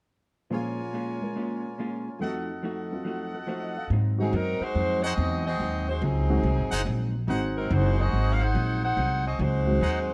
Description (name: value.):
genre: jazz, big band swing.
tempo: 142 BPM.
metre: 4/4.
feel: swing 65% on 8ths.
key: Ab mixolydian.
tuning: A4 = 444 Hz.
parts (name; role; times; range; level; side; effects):
vintage hollow-body jazz guitar; accompaniment; 0.5-10.1 s; Ab2 to Gb4; -36 LUFS; equal; none.
warm upright piano; accompaniment; 0.5-9.8 s; F2 to F5; -35 LUFS; equal; none.
clear trumpet section; stabs; 0.5-10.0 s; Eb4 to Ab5; -37 LUFS; equal; none.
upright bass; bass; 3.9-10.1 s; Gb1 to Ab2; -28 LUFS; equal; none.
warm saxophone section; melody; 4.2-10.1 s; Gb3 to Gb5; -31 LUFS; equal; none.
room: light reverb.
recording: close, detailed microphones.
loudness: -27 LUFS.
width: mono.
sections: 0.5-3.9 A section; 3.9-10.1 B section.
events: none.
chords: 0.5 Bbm7; 2.2 F7b9; 3.9 Ab7.